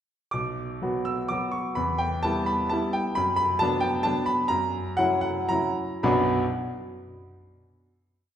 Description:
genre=classical, piano waltz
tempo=103-139 BPM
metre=3/4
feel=rubato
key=B minor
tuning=A4 = 440 Hz
part: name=clear concert grand piano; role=solo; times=0.3-6.4 s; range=B1 to E6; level=-24 LUFS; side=equal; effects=none
room=wet recital hall reverb, RT60 1.8 s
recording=heard from further back in the room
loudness=-23 LUFS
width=side -9 dB against mid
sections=0.3-6.1 A section; 6.1-7.6 final chord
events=slowing down 2.5-6.1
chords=0.3 Bm; 1.8 Em; 3.2 Bm/F#; 4.5 F#7; 6.1 Bm

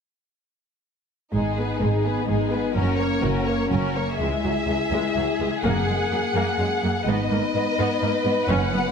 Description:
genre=cinematic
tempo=126 BPM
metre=3/4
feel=straight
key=unclear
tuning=A4 = 440 Hz
part: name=warm symphonic violin section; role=melody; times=1.3-8.9 s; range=G#4 to F#5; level=-27 LUFS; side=left 4 dB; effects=none
part: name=warm symphonic violin section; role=second line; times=1.3-8.9 s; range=D#4 to B4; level=-29 LUFS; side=left 2 dB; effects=none
part: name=warm symphonic viola section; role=accompaniment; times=1.3-8.8 s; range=F#3 to C#4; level=-29 LUFS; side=right 1 dB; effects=none
part: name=dark French horn section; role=sustained chords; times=1.3-8.9 s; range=G#3 to G#4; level=-28 LUFS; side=left 6 dB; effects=none
part: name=dark studio double bass section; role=bass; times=1.3-8.7 s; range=F#1 to C#2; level=-27 LUFS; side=right 3 dB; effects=none
part: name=rich symphonic cello section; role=bass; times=1.3-8.8 s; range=C#2 to G#2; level=-27 LUFS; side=right 3 dB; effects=none
part: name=timpani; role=percussion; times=5.6-6.3, 8.5-8.9 s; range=F#2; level=-30 LUFS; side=left 2 dB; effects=none
room=moderate scoring stage reverb, RT60 1.6 s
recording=none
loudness=-20 LUFS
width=side -6 dB against mid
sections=1.3-4.2 A section; 4.2-8.9 B section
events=build-up 4.2-8.9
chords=1.3 G#m; 2.8 F#; 4.2 C#m; 5.6 F#add9; 7.1 G#m

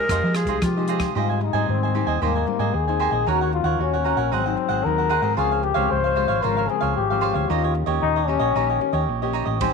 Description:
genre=samba and choro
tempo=114 BPM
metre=4/4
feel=straight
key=Ab major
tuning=A4 = 440 Hz
part: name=warm clarinet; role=melody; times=0.0-1.0 s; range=F4 to Bb4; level=-26 LUFS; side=equal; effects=none
part: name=cavaquinho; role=accompaniment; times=0.0-9.7 s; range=Eb4 to Ab5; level=-25 LUFS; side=right 14 dB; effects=none
part: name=nylon-string guitar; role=accompaniment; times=0.0-9.7 s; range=Ab2 to G4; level=-29 LUFS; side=left 13 dB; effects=none
part: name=hollow-body short-scale fingered electric bass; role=bass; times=0.1-9.7 s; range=Ab1 to F3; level=-25 LUFS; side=right 1 dB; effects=none
part: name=compact cocktail drum kit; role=drums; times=0.1-1.1, 9.6-9.7 s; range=hi-hat, kick drum, ride cymbal, rim click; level=-30 LUFS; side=right 1 dB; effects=none
part: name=clear trombone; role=second line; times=0.6-9.7 s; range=Bb3 to C5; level=-23 LUFS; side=left 9 dB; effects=none
room=moderate plate reverb, RT60 2.2 s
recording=1960s-style stereo with parts hard left and right, lossy compression artefacts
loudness=-19 LUFS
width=side -4 dB against mid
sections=0.0-1.2 A section; 1.2-9.7 B section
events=trombone solo 1.2-9.7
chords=0.0 Fm9; 1.2 Abmaj7; 3.3 Ebm7; 4.3 Ab7; 5.4 Dbmaj7; 7.5 Eb7

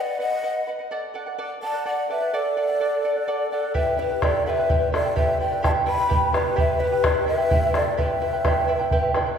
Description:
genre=andean folk, Andean ensemble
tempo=85 BPM (dotted quarters)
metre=6/8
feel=straight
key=E minor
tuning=A4 = 440 Hz
part: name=breathy mellow large quena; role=melody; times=0.0-9.1 s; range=B4 to B5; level=-24 LUFS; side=left 1 dB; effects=none
part: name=mellow hollow pan flute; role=second line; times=0.0-9.1 s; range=G4 to G5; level=-29 LUFS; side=equal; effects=none
part: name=charango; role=accompaniment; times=0.0-9.4 s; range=E4 to G5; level=-27 LUFS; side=right 3 dB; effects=none
part: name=bombo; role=percussion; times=3.7-9.3 s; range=none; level=-24 LUFS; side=equal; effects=none
room=wet scoring stage reverb, RT60 2.0 s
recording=recorded in a church or concert hall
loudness=-20 LUFS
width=side -7 dB against mid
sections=0.0-9.4 A section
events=none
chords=0.0 B; 0.9 D; 3.7 Em

